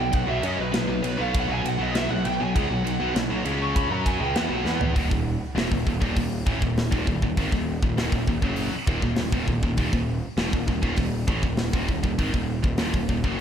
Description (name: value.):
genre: heavy metal.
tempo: 100 BPM.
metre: 4/4.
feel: straight.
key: Eb phrygian.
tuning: A4 = 440 Hz.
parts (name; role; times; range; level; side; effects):
high-gain lead guitar; melody; 0.0-4.8 s; B4 to Db6; -29 LUFS; right 1 dB; distortion, slapback echo, analog delay.
scooped high-gain guitar; riff; 0.0-13.4 s; Eb2 to F#4; -27 LUFS; equal; distortion.
fuzz picked electric bass; bass; 0.0-13.4 s; Eb1 to F#2; -29 LUFS; equal; overdrive.
tight metal drum kit; drums; 0.1-13.4 s; hi-hat, kick drum, ride cymbal, snare drum, toms; -26 LUFS; equal; none.
room: light reverb, studio ambience.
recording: none.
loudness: -22 LUFS.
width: side -8 dB against mid.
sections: 0.0-5.0 A section; 5.0-13.4 B section.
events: lead electric guitar solo 0.0-5.0; drum fill 4.7-5.0.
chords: 0.0 B5; 5.0 Ebm.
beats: | 0.14 0.74 1.34 1.95 | 2.55 3.15 3.76 4.36 | 4.96 5.56 6.17 6.77 | 7.37 7.97 8.57 9.18 | 9.78 10.38 10.98 11.58 | 12.19 12.79 13.39.